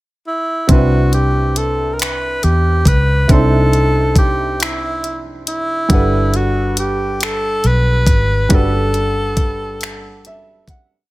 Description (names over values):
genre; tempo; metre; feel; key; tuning
slow six-eight R&B; 46 BPM (dotted quarters); 6/8; straight; C lydian; A4 = 437 Hz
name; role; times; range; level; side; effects
warm tenor saxophone; melody; 0.3-10.7 s; E4 to B4; -19 LUFS; equal; none
clear concert grand piano; accompaniment; 0.7-11.1 s; C3 to F#5; -21 LUFS; right 2 dB; none
vintage muted fingered electric bass; bass; 0.7-11.1 s; G1 to E2; -16 LUFS; equal; none
smooth R&B drum kit; drums; 0.7-10.9 s; finger snaps, hi-hat, kick drum; -14 LUFS; equal; none
room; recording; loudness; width
little or no reverb; none; -13 LUFS; side -19 dB against mid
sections
0.0-0.7 pickup bar; 0.7-11.1 verse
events
fade-out 8.5-11.1; grand piano fill 9.8-11.1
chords
0.0 N.C.; 0.7 Cmaj9; 5.9 Gmaj9